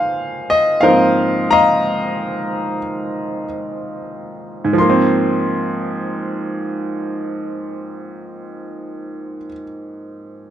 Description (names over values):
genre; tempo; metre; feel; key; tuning
solo jazz; free time; none; none; Ab major; A4 = 441 Hz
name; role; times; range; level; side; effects
clear baby grand piano; solo; 0.0-10.5 s; Ab2 to C6; -17 LUFS; equal; none
room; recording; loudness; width
light reverb; none; -16 LUFS; side -10 dB against mid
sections
0.0-4.8 A section; 4.8-8.7 B section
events
none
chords
0.0 Ab69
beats
free time